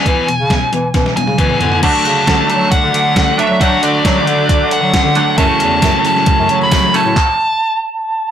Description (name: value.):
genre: indie rock.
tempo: 135 BPM.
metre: 4/4.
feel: straight.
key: unclear.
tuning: A4 = 442 Hz.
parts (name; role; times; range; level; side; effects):
nasal lead guitar with a parked wah; melody; 0.0-8.3 s; D5 to B5; -15 LUFS; equal; overdrive, slapback echo.
biting overdriven guitar; riff; 0.0-7.2 s; E2 to F#4; -18 LUFS; left 7 dB; none.
clear bass clarinet; bass; 0.1-7.1 s; E2 to F#3; -19 LUFS; right 1 dB; none.
crisp 8-bit digital drum machine; drums; 0.1-7.3 s; crash cymbal, handclaps, hi-hat, kick drum, snare drum, toms; -16 LUFS; equal; overdrive.
twangy electric guitar; riff; 1.8-7.2 s; F#2 to D4; -18 LUFS; right 8 dB; ensemble chorus, slapback echo.
tambourine; percussion; 5.4-7.1 s; none; -32 LUFS; right 10 dB; none.
room: light reverb.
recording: blown-out, overdriven recording, overdrive.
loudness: -11 LUFS.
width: side -9 dB against mid.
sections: 0.0-1.8 A section; 1.8-8.3 B section.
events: drum fill 0.9-1.8; stop 7.2-8.3.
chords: 0.1 E; 1.8 D; 5.4 F#m7.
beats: | 0.06 0.50 0.94 1.39 | 1.83 2.28 2.72 3.16 | 3.61 4.05 4.50 4.94 | 5.39 5.83 6.28 6.72 | 7.17 7.61 8.05.